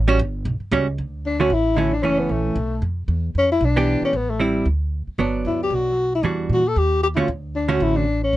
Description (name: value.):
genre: jazz, small-group swing and bop.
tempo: 229 BPM.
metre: 4/4.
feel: swing 57% on 8ths.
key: D major.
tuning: A4 = 440 Hz.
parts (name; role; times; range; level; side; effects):
upright bass; bass; 0.0-8.4 s; F#1 to Bb2; -23 LUFS; equal; none.
hollow-body jazz guitar; accompaniment; 0.1-8.0 s; D3 to G4; -21 LUFS; right 4 dB; none.
breathy tenor saxophone; melody; 1.3-8.4 s; G3 to A4; -20 LUFS; left 2 dB; none.
room: light reverb.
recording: nothing above 10.8 kHz.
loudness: -18 LUFS.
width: side -15 dB against mid.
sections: 1.0-8.4 A section.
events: none.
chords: 0.0 A13; 1.0 Dmaj7; 2.0 F#m7; 2.6 F; 3.1 Em7; 4.1 Am7; 4.7 N.C.; 5.2 Gmaj7; 6.2 Em9; 6.8 Eb7; 7.3 Dmaj7.